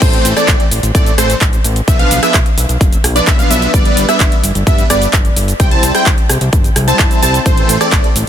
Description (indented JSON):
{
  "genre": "EDM, festival progressive house",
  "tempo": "129 BPM",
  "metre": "4/4",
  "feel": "straight",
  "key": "A minor",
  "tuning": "A4 = 439 Hz",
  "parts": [
    { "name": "plucky unison lead", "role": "arpeggios", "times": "0.0-8.1 s", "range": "C5 to A5", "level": "-18 LUFS", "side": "right 1 dB", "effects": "analog chorus, sidechain pumping, dub echo" },
    { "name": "supersaw chords", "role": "riff", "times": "0.0-8.1 s", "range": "E3 to A5", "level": "-17 LUFS", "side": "equal", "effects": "cassette tape, sidechain pumping, dub echo" },
    { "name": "fat analog bass", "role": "bass", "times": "0.0-8.2 s", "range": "F1 to A2", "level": "-17 LUFS", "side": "equal", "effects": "sidechain pumping" },
    { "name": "big-room dance drum kit", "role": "drums", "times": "0.0-8.3 s", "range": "crash cymbal, handclaps, hi-hat, rim click, shaker", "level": "-17 LUFS", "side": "equal", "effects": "none" },
    { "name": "electronic kick drum", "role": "drums", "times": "0.0-8.0 s", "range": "none", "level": "-12 LUFS", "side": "equal", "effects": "none" }
  ],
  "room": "little or no reverb",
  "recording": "dense, heavily limited modern master",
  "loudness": "-9 LUFS",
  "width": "side -10 dB against mid",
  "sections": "0.0-8.3 A section",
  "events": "none",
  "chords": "0.0 Am; 1.9 Bdim; 3.7 G; 5.6 C; 7.5 Am"
}